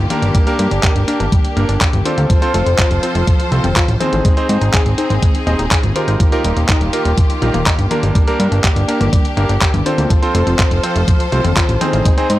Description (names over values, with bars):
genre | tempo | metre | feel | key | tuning
italo disco | 123 BPM | 4/4 | straight | unclear | A4 = 440 Hz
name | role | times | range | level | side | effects
clear symphonic string section | sustained chords | 0.0-12.4 s | Eb3 to C5 | -22 LUFS | equal | none
fat analog bass | bass | 0.0-12.4 s | Eb1 to Ab2 | -16 LUFS | equal | tube saturation
wide unison pluck | arpeggios | 0.1-12.4 s | F3 to Eb5 | -24 LUFS | left 3 dB | analog delay
bright electric grand piano | stabs | 0.1-12.4 s | Bb3 to C5 | -20 LUFS | right 1 dB | analog delay
clean 12-bit digital drum machine | drums | 0.1-12.4 s | handclaps, hi-hat, toms | -20 LUFS | left 1 dB | none
electronic kick drum | drums | 0.3-12.2 s | none | -15 LUFS | equal | none
room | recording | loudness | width
little or no reverb | dry, gritty hardware recording, transformer saturation | -12 LUFS | side -15 dB against mid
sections
0.0-12.4 A section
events
none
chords
0.3 Gm; 2.3 F; 4.2 Ab; 6.2 Ebadd9; 8.2 Gm; 10.1 F